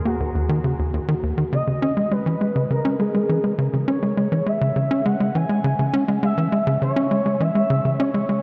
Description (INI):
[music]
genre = ambient, sequencer-driven space music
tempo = 102 BPM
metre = 4/4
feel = straight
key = C# dorian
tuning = A4 = 440 Hz
[part]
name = expressive portamento lead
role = melody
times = 0.0-8.4 s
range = Gb4 to G#5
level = -28 LUFS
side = equal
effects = lush chorus, delay
[part]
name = warm sub bass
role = bass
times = 0.0-1.5 s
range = Eb2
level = -35 LUFS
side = equal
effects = none
[part]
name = tight sequencer bass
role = riff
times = 0.1-8.4 s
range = Eb2 to C#4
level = -22 LUFS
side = equal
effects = delay
[sound]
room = wet huge ambient reverb, RT60 7.6 s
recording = in a vast, echoing space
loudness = -21 LUFS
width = mono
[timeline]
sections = 0.0-1.5 A section; 1.5-8.4 B section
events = none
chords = 0.0 Ebm; 1.5 C#m